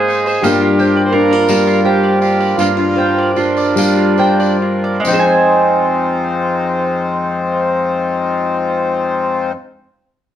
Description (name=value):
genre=acoustic folk duo or small band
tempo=66-86 BPM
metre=3/4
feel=straight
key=F dorian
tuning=A4 = 440 Hz
part: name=accordion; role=second line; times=0.0-9.5 s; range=C4 to C5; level=-17 LUFS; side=right 1 dB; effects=none
part: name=fingerpicked steel-string acoustic guitar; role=accompaniment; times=0.0-9.6 s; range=F2 to C5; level=-16 LUFS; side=left 2 dB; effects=none
part: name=accordion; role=sustained chords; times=0.0-9.5 s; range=G3 to C5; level=-21 LUFS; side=equal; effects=none
part: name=mandolin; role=arpeggios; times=0.0-9.7 s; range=Ab3 to Ab5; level=-18 LUFS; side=right 3 dB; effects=none
part: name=tambourine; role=percussion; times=0.1-5.5 s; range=none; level=-28 LUFS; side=left 3 dB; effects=none
room=wet studio reverb, RT60 0.8 s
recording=worn, warbling old tape, cassette tape, warbly pitch drift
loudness=-12 LUFS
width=side -10 dB against mid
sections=0.0-5.1 A section; 5.1-10.4 B section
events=slowing down 0.4-5.1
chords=0.4 Gm7; 5.1 Fm7